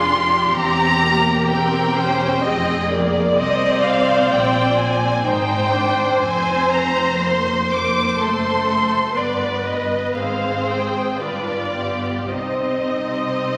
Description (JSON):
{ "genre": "classical, slow romantic movement for string orchestra", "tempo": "54-65 BPM", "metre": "3/4", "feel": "rubato", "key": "C minor", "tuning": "A4 = 440 Hz", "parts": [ { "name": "warm studio violin section", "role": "melody", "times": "0.0-13.6 s", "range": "C5 to D6", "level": "-23 LUFS", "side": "equal", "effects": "none" }, { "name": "rich studio violin section", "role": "second line", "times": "0.0-13.6 s", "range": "G4 to Eb5", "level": "-25 LUFS", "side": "equal", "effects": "none" }, { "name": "warm studio viola section", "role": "accompaniment", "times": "0.0-13.6 s", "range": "A3 to C5", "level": "-25 LUFS", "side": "equal", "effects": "none" }, { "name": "rich studio cello section", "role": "bass", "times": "0.0-13.6 s", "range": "E2 to C3", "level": "-32 LUFS", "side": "equal", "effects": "none" }, { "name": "warm studio double bass section", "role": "bass", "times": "0.0-13.6 s", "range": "E1 to C2", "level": "-29 LUFS", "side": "equal", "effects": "none" } ], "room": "wet concert hall reverb, RT60 2.1 s", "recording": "vinyl crackle", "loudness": "-19 LUFS", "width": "mono", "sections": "0.0-13.6 A section", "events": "none", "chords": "0.0 F5; 0.5 C7/E; 2.4 Fm; 3.4 Bb13; 5.2 Abmaj7; 6.2 F5; 8.2 F#dim; 9.2 G; 10.2 Abmaj7; 11.2 G7; 12.3 Cm", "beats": "| 0.54 1.48 2.42 | 3.36 4.30 5.25 | 6.21 7.20 8.20 | 9.18 10.17 11.21 | 12.30 13.38" }